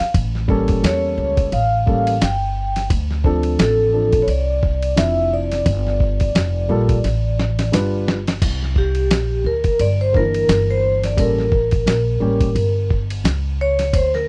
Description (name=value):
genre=hip hop, jazz-hop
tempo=87 BPM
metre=4/4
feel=swing 57% on 16ths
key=unclear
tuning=A4 = 441 Hz
part: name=vibraphone with medium mallets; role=melody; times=0.0-14.3 s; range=G4 to G5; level=-22 LUFS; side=equal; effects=none
part: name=upright bass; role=bass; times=0.0-14.3 s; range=F1 to E2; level=-23 LUFS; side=equal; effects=none
part: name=dusty soul sampler-style drum kit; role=drums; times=0.0-14.2 s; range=crash cymbal, hi-hat, kick drum, ride cymbal, snare drum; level=-22 LUFS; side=equal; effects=none
part: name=dark baby grand piano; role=accompaniment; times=0.5-12.5 s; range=D3 to B4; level=-25 LUFS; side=equal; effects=none
room=little or no reverb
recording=dry, close 1970s-style studio recording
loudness=-18 LUFS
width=mono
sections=0.0-8.4 A section; 8.4-14.3 B section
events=drum fill 7.0-8.4; vibraphone solo 8.4-14.3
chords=0.1 A7b9; 2.9 Dm7; 5.7 Gm9; 7.7 G7; 8.4 C9; 11.2 A7b9